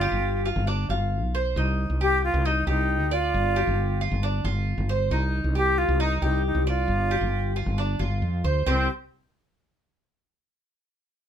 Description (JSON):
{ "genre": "latin, Cuban son and guajira", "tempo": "135 BPM", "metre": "4/4", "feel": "straight", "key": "C minor", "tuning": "A4 = 440 Hz", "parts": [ { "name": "silver concert flute", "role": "melody", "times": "0.0-8.9 s", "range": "C4 to G4", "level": "-26 LUFS", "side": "equal", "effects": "none" }, { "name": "Cuban tres", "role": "arpeggios", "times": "0.0-8.9 s", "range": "C4 to D5", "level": "-28 LUFS", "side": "equal", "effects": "none" }, { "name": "woody fretless electric bass", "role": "bass", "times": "0.0-8.9 s", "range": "G1 to F2", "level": "-25 LUFS", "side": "equal", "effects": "none" } ], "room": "light reverb", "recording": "minimal, uncompressed stereo recording", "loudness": "-22 LUFS", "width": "side -9 dB against mid", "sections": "0.0-8.7 A section; 8.7-10.4 B section", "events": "none", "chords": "0.0 G7; 1.6 Cmadd9; 3.3 G5; 5.1 Cmadd9; 6.9 G5; 8.7 C5", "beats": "0.23 0.67 1.12 | 1.56 2.00 2.45 2.89 | 3.34 3.78 4.22 4.67 | 5.11 5.55 6.00 6.44 | 6.88 7.33 7.77 8.21 | 8.66" }